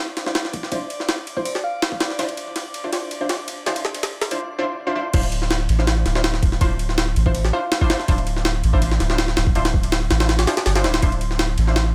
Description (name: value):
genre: drum and bass, jungle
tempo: 163 BPM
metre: 4/4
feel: straight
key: D minor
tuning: A4 = 440 Hz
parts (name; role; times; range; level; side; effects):
- orchestra-hit-like synth stab; stabs; 0.0-11.9 s; D4 to C5; -29 LUFS; equal; built-in reverb, cassette tape, dub echo
- drifting glass-harmonics texture; texture; 0.1-4.4 s; D5 to D6; -38 LUFS; equal; chorus, built-in reverb
- jungle sampler-style drum kit; drums; 0.2-11.9 s; crash cymbal, kick drum, ride cymbal, snare drum; -24 LUFS; equal; overdrive, high-pass filter on kick, studio reverb, high-pass filter on snare, high-pass filter on cymbals
- bell-like FM electric piano; melody; 1.4-2.0, 7.3-7.9 s; C5 to F5; -34 LUFS; equal; chorus, cassette tape, dub echo
- soft dub sub bass; bass; 5.1-11.9 s; D1 to A1; -22 LUFS; equal; none
room: little or no reverb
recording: none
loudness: -21 LUFS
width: mono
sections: 0.0-5.1 A section; 5.1-11.9 B section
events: build-up 0.0-5.1; filter sweep on synth stab 0.0-5.1; drum fill 2.2-4.4; drop 5.1-11.9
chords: 0.0 Dm9